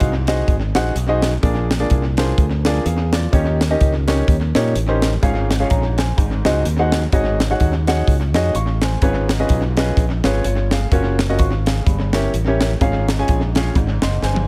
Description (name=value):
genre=uptempo gospel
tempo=127 BPM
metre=4/4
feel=swing 58% on 8ths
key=Db major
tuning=A4 = 440 Hz
part: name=warm upright piano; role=accompaniment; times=0.0-14.5 s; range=G2 to Db6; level=-23 LUFS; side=equal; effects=none
part: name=modern bright fingered electric bass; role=bass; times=0.0-14.5 s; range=Gb1 to Bb2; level=-22 LUFS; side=equal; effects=none
part: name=crisp fusion drum kit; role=drums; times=0.0-14.5 s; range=hi-hat, kick drum, snare drum, toms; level=-22 LUFS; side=equal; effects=analog delay
room=little or no reverb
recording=echo-heavy mix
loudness=-18 LUFS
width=mono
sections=0.0-14.5 A section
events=drum fill 14.2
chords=0.0 Ab7; 1.4 Bb7; 3.3 Eb7; 5.2 Db/Ab; 6.2 Ab7; 7.1 Ab7sus4; 9.0 Db7/Ab; 10.9 Gbmaj7; 11.9 Gdim7; 12.8 Db/Ab; 13.8 Abmaj7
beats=0.01 0.49 0.96 | 1.44 1.91 2.38 2.86 | 3.33 3.81 4.28 4.75 | 5.23 5.70 6.18 6.65 | 7.13 7.60 8.07 8.55 | 9.02 9.49 9.97 10.44 | 10.91 11.39 11.86 12.33 | 12.81 13.28 13.75 14.22